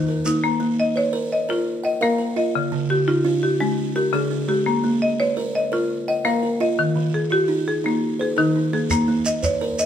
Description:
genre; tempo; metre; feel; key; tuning
southern african traditional, mbira-style interlocking cycle; 113 BPM (dotted quarters); 12/8; straight; Bb equiheptatonic; A4 = 440 Hz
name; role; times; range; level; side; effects
buzzing kalimba; arpeggios; 0.0-9.9 s; Db3+43c to G5-43c; -23 LUFS; right 4 dB; none
buzzing marimba with hard mallets; arpeggios; 0.0-9.9 s; Db3+43c to Eb5; -21 LUFS; left 3 dB; none
shekere; percussion; 0.3-0.4, 8.9-9.9 s; none; -27 LUFS; right 3 dB; none
room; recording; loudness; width
moderate large studio reverb, RT60 1.4 s; band playing live in one room; -19 LUFS; side -9 dB against mid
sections
0.4-9.9 A section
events
none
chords
0.4 Bbm; 2.5 Db; 4.7 Bbm; 6.8 Eb; 8.9 Bbm

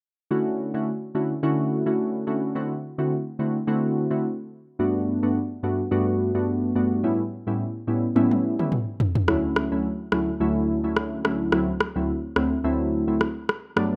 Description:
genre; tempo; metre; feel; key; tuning
afrobeats; 107 BPM; 4/4; swing 55% on 16ths; D major; A4 = 440 Hz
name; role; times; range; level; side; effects
glassy digital keys; accompaniment; 0.3-14.0 s; D2 to F#4; -25 LUFS; equal; chorus
deep house drum kit; drums; 8.2-13.9 s; rim click, toms; -27 LUFS; equal; none
room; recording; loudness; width
light reverb, digital ambience; rough home demo mix; -25 LUFS; mono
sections
0.3-14.0 A section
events
drum fill 8.2-9.3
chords
0.3 Dmaj7; 2.6 D7; 4.8 Gmaj7; 7.0 A7; 9.3 Dmaj7; 11.5 D7

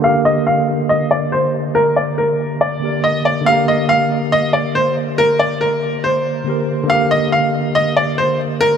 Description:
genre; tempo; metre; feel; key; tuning
hip hop; 140 BPM; 4/4; half-time; G minor; A4 = 440 Hz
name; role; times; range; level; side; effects
bright upright piano; melody; 0.0-8.8 s; Bb4 to F5; -15 LUFS; equal; low-pass filter
tine electric piano; accompaniment; 0.0-8.8 s; D3 to Bb4; -19 LUFS; equal; medium stereo tremolo, low-pass filter
room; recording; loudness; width
moderate huge ambient reverb, RT60 6.2 s; none; -14 LUFS; side -7 dB against mid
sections
0.0-8.8 A section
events
filter sweep 0.0-3.5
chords
0.0 Gm

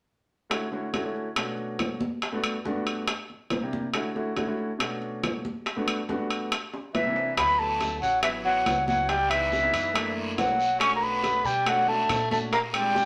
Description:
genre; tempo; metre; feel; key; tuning
Afro-Cuban jazz; 140 BPM; 4/4; straight; D major; A4 = 441 Hz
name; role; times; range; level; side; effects
warm concert grand piano; accompaniment; 0.5-13.0 s; G2 to G4; -34 LUFS; equal; none
bongos; percussion; 0.5-13.1 s; none; -40 LUFS; equal; none
claves; percussion; 0.5-13.0 s; none; -42 LUFS; equal; none
congas; percussion; 0.5-13.1 s; none; -38 LUFS; equal; none
timbales; percussion; 0.5-13.0 s; none; -33 LUFS; equal; none
concert flute; melody; 6.9-13.1 s; E5 to C#6; -26 LUFS; equal; none
growling tenor saxophone; second line; 6.9-13.1 s; E3 to C#4; -35 LUFS; equal; none
upright bass; bass; 7.4-13.1 s; A1 to B2; -40 LUFS; equal; none
guiro; percussion; 7.4-13.1 s; none; -40 LUFS; equal; none
room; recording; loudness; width
wet studio reverb, RT60 0.7 s; none; -27 LUFS; mono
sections
0.5-7.4 A section; 7.4-13.1 B section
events
drum fill 6.7-7.4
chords
0.5 Dmaj7; 1.4 Bm9; 2.2 Gmaj7; 3.1 C7; 3.9 Dmaj7; 4.8 Bm9; 5.7 Gmaj7; 6.5 C7; 7.4 Dmaj13; 9.1 C#m7b5; 10.0 F#7alt; 10.8 Bm9; 12.5 Bb9

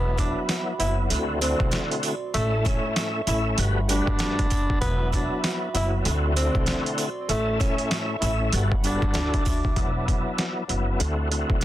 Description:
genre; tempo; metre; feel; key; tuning
hip hop, boom-bap hip-hop; 97 BPM; 4/4; swing 62% on 16ths; E minor; A4 = 438 Hz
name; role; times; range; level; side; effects
breathy tenor saxophone; melody; 0.0-9.7 s; A3 to E4; -30 LUFS; equal; high-pass filter, low-pass filter, ping-pong delay
overdriven tonewheel organ; accompaniment; 0.0-11.6 s; G2 to E5; -28 LUFS; left 2 dB; chorus vibrato, fast rotary speaker, high-pass filter, low-pass filter
dark analog pad; sustained chords; 0.0-9.8 s; G3 to D6; -35 LUFS; right 3 dB; chorus, high-pass filter, low-pass filter
upright bass; bass; 0.0-11.6 s; E1 to D2; -26 LUFS; equal; none
boom bap sampler-style drum kit; drums; 0.2-11.6 s; hi-hat, kick drum, snare drum; -26 LUFS; equal; overdrive, vintage 12-bit sampler grit
sleigh bells; percussion; 0.2-9.6 s; none; -37 LUFS; right 8 dB; none
room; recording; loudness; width
little or no reverb; dense, heavily limited modern master; -22 LUFS; side -13 dB against mid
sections
0.0-9.8 A section; 9.8-11.6 B section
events
none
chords
0.0 Esus2; 1.1 D7; 2.3 A; 3.6 Gmaj7; 4.8 Esus2; 6.1 D7; 7.3 A; 8.5 Gmaj7; 9.1 Dadd9; 9.8 Esus2; 11.0 D7

